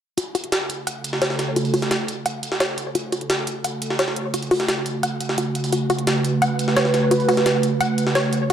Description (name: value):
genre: dark technical drum and bass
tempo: 173 BPM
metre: 4/4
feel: straight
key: F# minor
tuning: A4 = 440 Hz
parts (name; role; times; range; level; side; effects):
- sweeping resonant pad; sustained chords; 0.2-8.5 s; C#3 to B4; -23 LUFS; right 2 dB; chorus
- wide unison pluck; arpeggios; 0.2-8.5 s; F#4 to F#5; -24 LUFS; left 1 dB; dub echo
- electronic hi-hat; drums; 0.2-8.5 s; none; -31 LUFS; right 2 dB; overdrive
- jungle sampler-style drum kit; drums; 0.2-8.5 s; hi-hat, snare drum; -25 LUFS; equal; high-pass filter on hats, high-pass filter on snare, high-pass filter on room
room: moderate lush hall reverb, RT60 1.7 s, digital ambience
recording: none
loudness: -19 LUFS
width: side -9 dB against mid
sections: 0.2-8.5 A section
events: filter sweep on analog synth pad 0.2-8.5; filter sweep on synth arpeggio sound 0.2-8.5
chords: 0.2 F#m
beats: | 0.18 0.52 0.87 1.22 | 1.56 1.91 2.26 2.60 | 2.95 3.30 3.65 3.99 | 4.34 4.68 5.03 5.38 | 5.72 6.07 6.42 6.77 | 7.11 7.46 7.81 8.15 | 8.50